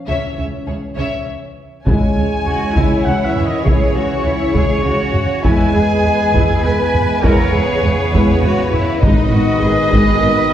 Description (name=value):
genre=cinematic, epic orchestral film score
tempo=101 BPM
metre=3/4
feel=straight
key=C# minor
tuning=A4 = 442 Hz
part: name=mellow French horn section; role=sustained chords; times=0.0-10.5 s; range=C#3 to Db4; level=-23 LUFS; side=equal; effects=none
part: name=rich symphonic violin section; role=melody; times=0.1-10.5 s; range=B4 to Fb5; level=-25 LUFS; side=left 3 dB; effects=none
part: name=rich symphonic violin section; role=second line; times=0.1-10.5 s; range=Ab4 to G#5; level=-24 LUFS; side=left 2 dB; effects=none
part: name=dark studio viola section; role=accompaniment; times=0.1-10.3 s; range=G#3 to E4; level=-22 LUFS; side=equal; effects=none
part: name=rich symphonic cello section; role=bass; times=0.1-10.5 s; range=Db3 to B4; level=-22 LUFS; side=right 1 dB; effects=none
part: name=rich symphonic double bass section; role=bass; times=0.1-10.3 s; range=G#1 to E2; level=-20 LUFS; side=right 1 dB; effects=none
part: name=bright trombone section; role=sustained chords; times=1.9-10.5 s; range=B2 to C#4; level=-24 LUFS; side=right 2 dB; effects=none
part: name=clear trumpet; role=stabs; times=1.9-10.5 s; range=C#5 to G#5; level=-22 LUFS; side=equal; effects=none
part: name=taiko ensemble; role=drums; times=1.9-10.5 s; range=none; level=-18 LUFS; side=equal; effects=none
part: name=timpani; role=percussion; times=9.0-9.9 s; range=G#2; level=-22 LUFS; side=equal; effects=none
room=wet scoring stage reverb, RT60 1.5 s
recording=heard from further back in the room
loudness=-13 LUFS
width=side -10 dB against mid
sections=0.0-1.9 A section; 1.9-10.5 B section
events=none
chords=0.1 Dbm; 1.9 C#m; 5.4 E; 9.0 G#m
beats=| 0.08 0.68 1.27 | 1.87 2.46 3.06 | 3.66 4.25 4.85 | 5.45 6.04 6.64 | 7.24 7.83 8.43 | 9.03 9.62 10.22